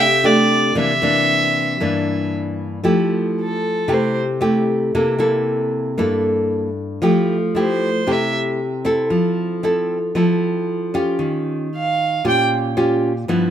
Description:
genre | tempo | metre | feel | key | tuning
bossa nova | 115 BPM | 4/4 | straight | F major | A4 = 440 Hz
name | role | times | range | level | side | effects
rich violin | melody | 0.0-4.2, 7.6-8.4, 11.8-12.4 s | A4 to G5 | -18 LUFS | right 2 dB | none
nylon-string guitar | accompaniment | 0.0-13.5 s | G2 to A4 | -17 LUFS | equal | none
room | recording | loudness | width
light reverb | minimal, uncompressed stereo recording | -16 LUFS | side -10 dB against mid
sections
0.0-2.9 A section; 2.9-13.5 B section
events
violin solo 2.9-13.5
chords
0.0 F69 (rootless); 0.8 C9; 2.9 Fmaj9; 4.9 C6; 7.0 Fmaj9; 11.2 Eb9

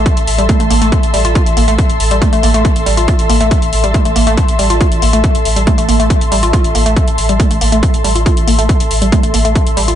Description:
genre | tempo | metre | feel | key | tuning
driving peak-time techno | 139 BPM | 4/4 | straight | A minor | A4 = 440 Hz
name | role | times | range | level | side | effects
saturated sub bass | bass | 0.0-10.0 s | A1 | -16 LUFS | equal | overdrive, sidechain pumping, low-pass filter
ethereal airy pad | texture | 0.0-10.0 s | A4 to C6 | -18 LUFS | left 1 dB | ensemble chorus, built-in reverb, sidechain pumping
electronic hi-hat | drums | 0.1-10.0 s | none | -21 LUFS | left 1 dB | overdrive
electronic kick drum | drums | 0.1-9.6 s | none | -13 LUFS | equal | overdrive
woody wave-folded pluck | riff | 0.4-9.9 s | G3 to F4 | -17 LUFS | right 1 dB | chorus, overdrive, sidechain pumping, digital delay
room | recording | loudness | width
light reverb, digital ambience | nothing above 10.3 kHz | -9 LUFS | side -10 dB against mid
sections
0.0-10.0 A section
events
none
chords
0.0 Am

